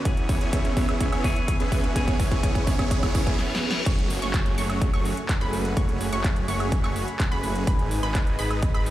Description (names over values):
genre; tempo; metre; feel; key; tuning
EDM, festival progressive house; 126 BPM; 4/4; straight; F# minor; A4 = 441 Hz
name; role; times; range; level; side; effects
clean electric guitar; accompaniment; 0.0-3.4 s; E3 to G#4; -33 LUFS; left 1 dB; sidechain pumping, dub echo
lush unison pad; sustained chords; 0.0-8.9 s; A3 to D#6; -36 LUFS; right 2 dB; chorus, sidechain pumping
supersaw chords; riff; 0.0-8.9 s; A3 to E5; -29 LUFS; right 1 dB; analog chorus, sidechain pumping, dub echo
detuned saw bass; bass; 0.0-8.9 s; E1 to G#1; -30 LUFS; equal; sidechain pumping, high-pass filter
riser, reverse cymbal and downlifter; sound effects; 0.0-7.7 s; none; -36 LUFS; left 1 dB; none
big-room dance drum kit; drums; 0.1-8.9 s; crash cymbal, handclaps, hi-hat, snare drum, woodblock; -34 LUFS; right 1 dB; none
electronic kick drum; drums; 0.1-8.7 s; none; -23 LUFS; equal; none
wide unison pluck; arpeggios; 3.9-8.9 s; B5 to C#6; -34 LUFS; right 1 dB; sidechain pumping, dub echo
room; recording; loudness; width
light reverb, digital ambience; played on a big sound system in a bare room, large studio reverb; -22 LUFS; side -14 dB against mid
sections
0.0-3.9 A section; 3.9-8.9 B section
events
build-up 0.0-3.9; drum fill 0.0-3.4, 3.4-3.9; riser 0.0-3.4; reverse cymbal 2.9-3.9; drop 3.9-8.9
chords
0.1 E6; 3.9 F#madd9; 7.7 G#m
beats
| 0.05 0.53 1.01 1.48 | 1.96 2.44 2.91 3.39 | 3.86 4.34 4.82 5.29 | 5.77 6.25 6.72 7.20 | 7.67 8.15 8.63